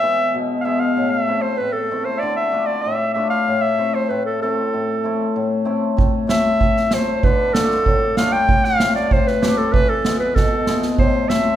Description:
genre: klezmer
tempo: 96 BPM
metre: 2/4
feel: straight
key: A minor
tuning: A4 = 442 Hz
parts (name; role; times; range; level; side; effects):
- clear clarinet; melody; 0.0-11.6 s; A4 to G5; -19 LUFS; equal; none
- cimbalom; accompaniment; 0.0-11.6 s; A2 to G4; -21 LUFS; left 2 dB; none
- street-band drum kit; drums; 6.0-11.4 s; kick drum, snare drum; -19 LUFS; right 2 dB; none
room: moderate recital hall reverb, RT60 1.8 s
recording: recorded in a church or concert hall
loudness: -16 LUFS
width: side -11 dB against mid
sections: 0.0-6.0 A section; 6.0-11.6 A section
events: drum fill 10.4-11.0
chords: 0.0 E; 1.0 Am; 2.2 Dm; 3.5 Am; 7.2 Dm; 8.5 Am; 9.7 E; 11.0 Am

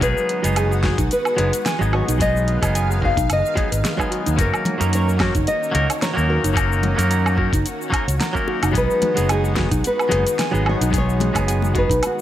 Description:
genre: sunset chillout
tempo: 110 BPM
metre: 4/4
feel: swing 55% on 16ths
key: unclear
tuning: A4 = 437 Hz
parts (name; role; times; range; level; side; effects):
- nylon-string guitar; melody; 0.0-12.2 s; F#4 to E#5; -23 LUFS; left 1 dB; digital delay
- twangy electric guitar; accompaniment; 0.0-11.9 s; F#3 to A#4; -24 LUFS; equal; auto-pan, digital delay
- lush unison pad; sustained chords; 0.0-12.2 s; D#3 to E#5; -29 LUFS; equal; chorus
- fretless electric bass; bass; 0.0-12.0 s; F#1 to F#2; -20 LUFS; equal; none
- deep house drum kit; drums; 0.0-12.2 s; cabasa, hi-hat, snare drum, woodblock; -26 LUFS; right 1 dB; none
- electronic kick drum; drums; 0.0-12.0 s; none; -24 LUFS; equal; none
- mellow electric guitar; arpeggios; 0.4-12.0 s; D#4 to A#5; -29 LUFS; right 3 dB; warbly pitch drift, digital delay
- congas and bongos; percussion; 4.7-11.9 s; none; -27 LUFS; left 4 dB; none
room: light reverb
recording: none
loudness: -17 LUFS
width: side -12 dB against mid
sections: 0.0-12.2 A section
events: none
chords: 0.0 B6; 4.4 F#6; 8.8 B6

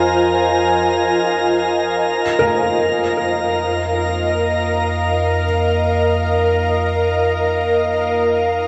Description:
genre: ambient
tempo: free time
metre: none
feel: none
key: unclear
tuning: A4 = 440 Hz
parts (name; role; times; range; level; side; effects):
- ethereal airy pad; sustained chords; 0.0-8.7 s; F4 to Ab5; -19 LUFS; equal; ensemble chorus, built-in reverb
- deep rumbling drone; bass; 0.0-8.7 s; F2; -26 LUFS; equal; built-in reverb
- drifting glass-harmonics texture; texture; 0.0-8.7 s; Bb4 to Bb5; -25 LUFS; equal; chorus, built-in reverb
- felt-muted upright piano; arpeggios; 2.4-8.7 s; Bb4; -24 LUFS; equal; delay
room: wet plate reverb, RT60 2.2 s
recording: dreamy mix soaked in reverb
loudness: -17 LUFS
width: mono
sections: 0.0-8.7 A section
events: fade-out on synth drone 0.0-8.7; fade-out on synth texture 0.0-8.7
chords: 0.0 Fm7; 2.0 Eb5/F

